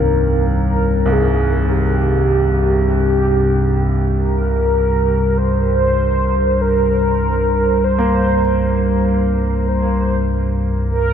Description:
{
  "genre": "dark ambient drone",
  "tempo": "49 BPM",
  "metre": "4/4",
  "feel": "straight",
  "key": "C minor",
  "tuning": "A4 = 440 Hz",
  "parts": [
    { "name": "mellow horn-like synth lead", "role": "melody", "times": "0.0-11.1 s", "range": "G4 to C5", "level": "-18 LUFS", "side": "right 1 dB", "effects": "analog chorus, diffuse ambient delay" },
    { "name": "clear baby grand piano", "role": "arpeggios", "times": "0.0-11.1 s", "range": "C2 to Bb3", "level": "-24 LUFS", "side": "right 1 dB", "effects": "diffuse ambient delay" },
    { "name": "deep rumbling drone", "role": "drone", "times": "0.0-11.1 s", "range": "C2 to G2", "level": "-16 LUFS", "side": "equal", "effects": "built-in reverb" }
  ],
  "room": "wet huge ambient reverb, RT60 8.0 s",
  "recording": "in a vast, echoing space",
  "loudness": "-14 LUFS",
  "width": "side -8 dB against mid",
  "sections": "0.0-11.1 A section",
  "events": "none",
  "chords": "0.0 Cm",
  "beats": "0.49 1.72 2.94 | 4.17 5.39 6.62 7.84 | 9.06 10.29"
}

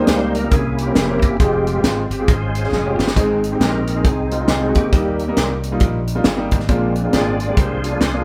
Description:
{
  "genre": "uptempo gospel",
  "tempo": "136 BPM",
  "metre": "4/4",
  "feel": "swing 60% on 8ths",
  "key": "Ab major",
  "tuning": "A4 = 440 Hz",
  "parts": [
    { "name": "clear upright piano", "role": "accompaniment", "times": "0.0-8.2 s", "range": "Ab2 to C5", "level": "-24 LUFS", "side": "equal", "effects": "none" },
    { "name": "bright tonewheel organ", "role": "sustained chords", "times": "0.0-8.2 s", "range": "G3 to D5", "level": "-24 LUFS", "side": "equal", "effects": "fast rotary speaker, chorus vibrato" },
    { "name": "slap bass", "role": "bass", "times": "0.1-8.2 s", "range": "F1 to Eb2", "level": "-25 LUFS", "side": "equal", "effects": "none" },
    { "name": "tight funk drum kit", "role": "drums", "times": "0.1-8.1 s", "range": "hi-hat, kick drum, snare drum", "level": "-21 LUFS", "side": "equal", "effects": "none" },
    { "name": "mellow French horn section", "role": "sustained chords", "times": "3.2-8.2 s", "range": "Eb3 to Eb4", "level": "-32 LUFS", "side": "equal", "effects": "none" }
  ],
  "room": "light reverb",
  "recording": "band playing live in one room",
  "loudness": "-18 LUFS",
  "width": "mono",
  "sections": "0.0-8.2 A section",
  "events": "tonewheel organ solo 0.0-8.2; drum fill 2.7-3.2",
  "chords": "0.0 Eb; 0.5 C7b9; 1.4 Fm; 2.3 Db/Ab; 3.2 Ab; 4.9 Eb; 6.7 Bb7",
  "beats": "0.08 0.52 0.96 | 1.40 1.84 2.29 2.73 | 3.17 3.61 4.05 4.49 | 4.93 5.37 5.81 6.25 | 6.69 7.13 7.57 8.01"
}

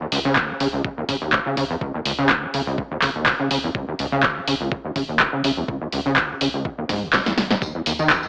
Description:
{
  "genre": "acid house",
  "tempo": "124 BPM",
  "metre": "4/4",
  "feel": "swing 53% on 16ths",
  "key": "unclear",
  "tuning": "A4 = 443 Hz",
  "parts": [
    { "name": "overdriven acid bass", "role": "riff", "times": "0.0-8.3 s", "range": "Cb2 to Eb3", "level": "-23 LUFS", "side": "equal", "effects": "distortion, ensemble chorus, cassette tape, sidechain pumping, tape echo" },
    { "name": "warm sub bass", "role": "bass", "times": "0.1-8.1 s", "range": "Ab1 to Eb2", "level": "-40 LUFS", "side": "equal", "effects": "sidechain pumping" },
    { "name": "punchy analog drum machine", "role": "drums", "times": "0.1-8.2 s", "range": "handclaps, hi-hat, snare drum", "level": "-20 LUFS", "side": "equal", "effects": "none" },
    { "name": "electronic kick drum", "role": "drums", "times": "0.4-8.2 s", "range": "none", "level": "-28 LUFS", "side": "equal", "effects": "none" },
    { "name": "tambourine", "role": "percussion", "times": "7.6-8.3 s", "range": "none", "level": "-32 LUFS", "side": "equal", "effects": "none" }
  ],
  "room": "moderate plate reverb, RT60 1.5 s, digital ambience",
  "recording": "dry, gritty hardware recording, AM radio sound",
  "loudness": "-19 LUFS",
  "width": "side -40 dB against mid",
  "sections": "0.0-8.3 A section",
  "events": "drum fill 6.9-7.6",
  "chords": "0.0 Db5; 7.6 N.C.",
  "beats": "0.36 0.85 1.33 | 1.81 2.30 2.78 3.27 | 3.75 4.23 4.72 5.20 | 5.68 6.17 6.65 7.14 | 7.62 8.10"
}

